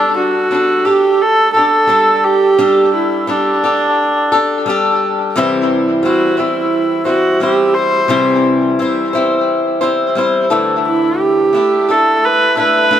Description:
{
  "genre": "rock",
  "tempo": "87 BPM",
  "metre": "4/4",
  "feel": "straight",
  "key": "unclear",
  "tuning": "A4 = 440 Hz",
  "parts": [
    { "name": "warm viola", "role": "melody", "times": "0.0-13.0 s", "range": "D4 to C5", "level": "-13 LUFS", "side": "right 2 dB", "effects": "tape echo" },
    { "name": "picked swing-style acoustic guitar", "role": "accompaniment", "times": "0.0-13.0 s", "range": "C3 to C5", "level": "-14 LUFS", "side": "left 2 dB", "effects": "tape echo" }
  ],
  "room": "light reverb",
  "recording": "echo-heavy mix",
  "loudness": "-11 LUFS",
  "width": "side -10 dB against mid",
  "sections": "0.0-13.0 A section",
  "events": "none",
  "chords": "0.0 Gsus2; 5.4 C; 10.5 Dsus2",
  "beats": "0.52 1.21 1.91 | 2.60 3.29 3.98 4.67 | 5.35 6.04 6.73 7.42 | 8.11 8.79 9.48 10.17 | 10.86 11.54 12.23 12.91"
}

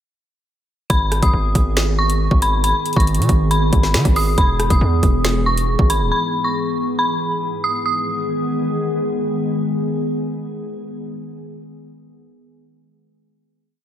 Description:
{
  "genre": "hip hop, drill",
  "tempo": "138 BPM",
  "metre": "4/4",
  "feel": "half-time",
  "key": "G# minor",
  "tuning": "A4 = 440 Hz",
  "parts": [
    { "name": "dark detuned synth bell", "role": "melody", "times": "0.9-9.1 s", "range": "B5 to D#6", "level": "-21 LUFS", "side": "left 1 dB", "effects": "chorus, tremolo, tape echo" },
    { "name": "glassy FM pad", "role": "sustained chords", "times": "1.4-10.8 s", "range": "G#2 to G#4", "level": "-23 LUFS", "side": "equal", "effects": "ensemble chorus, built-in reverb" },
    { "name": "distorted 808-style bass", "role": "bass", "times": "0.9-6.1 s", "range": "D#1 to D#3", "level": "-18 LUFS", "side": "equal", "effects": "distortion" },
    { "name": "drill drum kit", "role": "drums", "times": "0.9-6.0 s", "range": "finger snaps, hi-hat, kick drum, rim click, snare drum", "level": "-18 LUFS", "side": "equal", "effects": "none" }
  ],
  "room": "moderate plate reverb, RT60 1.7 s, digital ambience",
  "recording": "dreamy mix soaked in reverb",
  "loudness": "-16 LUFS",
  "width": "side -10 dB against mid",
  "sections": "0.9-7.9 hook; 7.9-11.3 final chord",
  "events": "none",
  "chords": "0.9 G#m; 4.4 E; 7.9 G#m",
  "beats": "| 0.90 1.33 1.77 2.20 | 2.64 3.07 3.51 3.94 | 4.38 4.81 5.25 5.68 | 6.12 6.55 6.99 7.42 | 7.86 8.29 8.72 9.16 | 9.60 10.03 10.46"
}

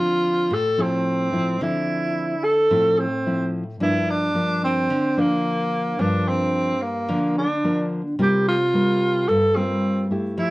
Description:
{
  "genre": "bossa nova",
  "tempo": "110 BPM",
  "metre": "4/4",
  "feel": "straight",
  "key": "unclear",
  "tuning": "A4 = 442 Hz",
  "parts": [
    { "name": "breathy tenor saxophone", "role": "melody", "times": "0.0-10.5 s", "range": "Bb3 to A4", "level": "-21 LUFS", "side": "right 1 dB", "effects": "none" },
    { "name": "nylon-string guitar", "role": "accompaniment", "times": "0.0-10.5 s", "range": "G2 to G4", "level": "-23 LUFS", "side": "equal", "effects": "none" }
  ],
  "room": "moderate studio reverb, RT60 0.8 s",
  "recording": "worn, warbling old tape, cassette tape, warbly pitch drift",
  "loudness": "-19 LUFS",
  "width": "side -19 dB against mid",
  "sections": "0.0-10.5 A section",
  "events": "none",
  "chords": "0.0 Dm9; 3.8 Gm7; 8.2 C7sus4",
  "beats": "0.51 1.06 | 1.61 2.15 2.70 3.25 | 3.80 4.35 4.90 5.45 | 5.99 6.54 7.09 7.64 | 8.19 8.73 9.28 9.83 | 10.38"
}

